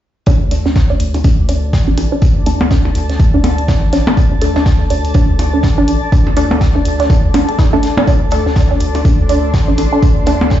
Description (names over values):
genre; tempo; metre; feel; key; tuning
minimal techno; 123 BPM; 4/4; swing 59% on 16ths; unclear; A4 = 438 Hz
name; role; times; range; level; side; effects
resonant blip pluck; riff; 0.3-10.6 s; D4 to A4; -18 LUFS; right 2 dB; chorus, phaser, sidechain pumping, digital delay
saturated sub bass; bass; 0.3-10.6 s; A1 to D2; -16 LUFS; equal; sidechain pumping
electronic kick drum; drums; 0.3-10.6 s; none; -12 LUFS; equal; none
raw garage drum kit; drums; 0.3-10.6 s; hi-hat, snare drum; -30 LUFS; left 1 dB; sidechain pumping on hats, high-pass filter on hats, high-pass filter on snare, high-pass filter on room
percussion blips; percussion; 0.3-10.5 s; none; -19 LUFS; left 1 dB; ping-pong delay
bubbling stepped-filter texture; texture; 0.5-10.6 s; D5; -29 LUFS; right 2 dB; chorus, built-in reverb, sidechain pumping
granular cloud pad; texture; 1.6-10.6 s; D4 to C6; -22 LUFS; left 2 dB; built-in reverb, sidechain pumping
filtered dub chord stab; stabs; 0.5-10.3 s; A3 to A4; -22 LUFS; left 2 dB; phaser, analog chorus, ping-pong delay
electronic hi-hat; drums; 0.5-10.4 s; none; -30 LUFS; equal; none
room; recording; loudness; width
moderate small room reverb, RT60 0.5 s; played on a big sound system in a bare room, large studio reverb, nothing above 7.6 kHz; -10 LUFS; side -12 dB against mid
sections
0.3-10.6 A section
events
filter sweep on synth arpeggio sound 0.3-10.6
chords
0.3 D5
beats
| 0.27 0.76 1.25 1.73 | 2.22 2.71 3.20 3.68 | 4.17 4.66 5.15 5.64 | 6.12 6.61 7.10 7.59 | 8.07 8.56 9.05 9.54 | 10.03 10.51